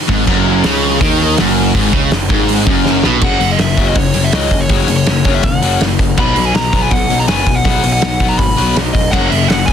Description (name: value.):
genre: punk rock.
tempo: 162 BPM.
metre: 4/4.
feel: straight.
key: unclear.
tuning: A4 = 439 Hz.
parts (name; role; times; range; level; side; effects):
distorted electric guitar; riff; 0.1-9.7 s; F#2 to B3; -17 LUFS; left 11 dB; overdrive.
distorted electric guitar; riff; 0.1-3.2 s; F#2 to D#3; -18 LUFS; equal; distortion.
sludgy distorted guitar; riff; 0.1-3.2 s; F#2 to D#3; -17 LUFS; right 12 dB; overdrive.
fuzz picked electric bass; bass; 0.1-9.7 s; E1 to D#2; -17 LUFS; equal; overdrive.
loose indie drum kit; drums; 0.1-9.7 s; crash cymbal, hi-hat, kick drum, snare drum; -15 LUFS; right 1 dB; none.
dark smooth lead guitar; melody; 3.2-9.7 s; C#5 to B5; -18 LUFS; equal; overdrive, digital delay.
room: light reverb.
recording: dense, heavily limited modern master.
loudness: -10 LUFS.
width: side -8 dB against mid.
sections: 0.0-3.2 A section; 3.2-9.7 B section.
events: drum fill 2.8-3.2.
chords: 0.0 F#5; 6.2 B5; 9.1 F#5.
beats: | 0.27 0.64 1.01 1.38 | 1.75 2.11 2.48 2.85 | 3.22 3.59 3.96 4.33 | 4.69 5.06 5.43 5.80 | 6.17 6.54 6.91 7.28 | 7.65 8.02 8.39 8.76 | 9.13 9.49.